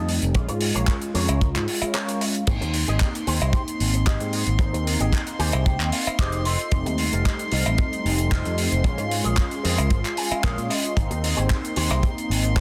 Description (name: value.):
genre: nu-disco, nu disco.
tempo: 113 BPM.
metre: 4/4.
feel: straight.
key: Ab major.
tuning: A4 = 441 Hz.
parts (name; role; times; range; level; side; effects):
mellow synth brass; accompaniment; 0.0-12.6 s; G3 to F4; -30 LUFS; equal; chorus, phaser, sidechain pumping, dub echo.
electric guitar with an envelope filter; riff; 0.0-12.6 s; F4 to Ab5; -34 LUFS; equal; ensemble chorus, dub echo.
picked electric bass with an envelope filter; bass; 0.0-12.6 s; F1 to Bb2; -27 LUFS; equal; sidechain pumping.
damped 70s drum kit; drums; 0.1-12.6 s; crash cymbal, handclaps, hi-hat, rim click; -30 LUFS; equal; studio reverb, soft clipping on snare.
kick drum; drums; 0.3-12.6 s; none; -24 LUFS; equal; studio reverb.
cowbell; percussion; 1.3-12.0 s; none; -34 LUFS; equal; none.
bright chamber string section; sustained chords; 2.5-12.6 s; C6; -35 LUFS; equal; sidechain pumping.
room: light reverb, studio reverb.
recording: dense, heavily limited modern master.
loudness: -23 LUFS.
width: mono.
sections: 0.0-12.6 A section.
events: clean electric guitar fill 5.1-6.7, 9.9-11.0.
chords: 0.4 Bbm7; 2.5 Abmaj7; 6.5 F7; 8.8 Bbm7; 11.0 Abmaj7.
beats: | 0.35 0.88 1.41 1.94 | 2.48 3.01 3.54 4.07 | 4.60 5.13 5.66 6.19 | 6.72 7.25 7.79 8.32 | 8.85 9.38 9.91 10.44 | 10.97 11.50 12.03 12.56.